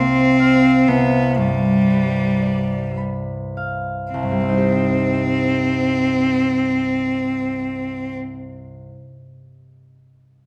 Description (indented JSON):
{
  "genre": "classical, romantic duo for cello and harp",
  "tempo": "49-65 BPM",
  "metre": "3/4",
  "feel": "rubato",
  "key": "C minor",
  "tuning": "A4 = 440 Hz",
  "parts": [
    { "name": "clear cello", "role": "melody", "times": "0.0-8.2 s", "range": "G3 to C4", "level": "-20 LUFS", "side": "equal", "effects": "none" },
    { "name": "concert harp", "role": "accompaniment", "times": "0.0-9.1 s", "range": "C2 to C6", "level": "-24 LUFS", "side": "equal", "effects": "none" }
  ],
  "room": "wet recital hall reverb, RT60 1.5 s",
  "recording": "none",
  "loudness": "-19 LUFS",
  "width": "mono",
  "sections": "0.0-4.1 A section; 4.1-7.4 B section",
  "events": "slowing down 0.0-4.1",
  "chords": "0.0 F5/C; 0.9 G7/C; 4.1 Cm"
}